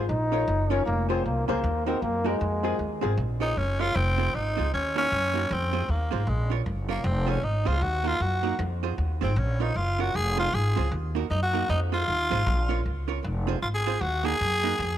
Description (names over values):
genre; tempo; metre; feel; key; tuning
ska; 155 BPM; 4/4; swing 62% on 8ths; Bb minor; A4 = 440 Hz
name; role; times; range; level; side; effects
hollow-body jazz guitar; accompaniment; 0.0-14.8 s; Bb3 to Db5; -33 LUFS; right 11 dB; none
dark upright piano; stabs; 0.0-3.1 s; C4 to Db5; -32 LUFS; left 8 dB; tape echo
upright bass; bass; 0.0-15.0 s; F1 to Gb2; -27 LUFS; equal; none
clear trombone; melody; 0.1-3.0 s; Ab3 to Eb4; -29 LUFS; equal; none
growling tenor saxophone; melody; 3.4-15.0 s; Ab3 to Ab4; -28 LUFS; equal; none
room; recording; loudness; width
moderate plate reverb, RT60 3.7 s; 1960s-style stereo with parts hard left and right; -24 LUFS; side -11 dB against mid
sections
0.0-3.2 A section; 3.2-15.0 B section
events
tenor saxophone solo 3.2-15.0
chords
0.1 Bbm; 0.9 Fm; 1.6 Ebm; 2.4 Fm; 3.2 Bbm; 3.9 Fm; 4.7 Ebm; 5.5 Fm; 6.3 Bbm; 7.0 Fm; 7.8 Ebm; 8.6 Fm; 9.4 Bbm; 10.1 Fm; 10.9 Ebm; 11.7 Fm; 12.5 Bbm; 13.2 Fm; 14.0 Ebm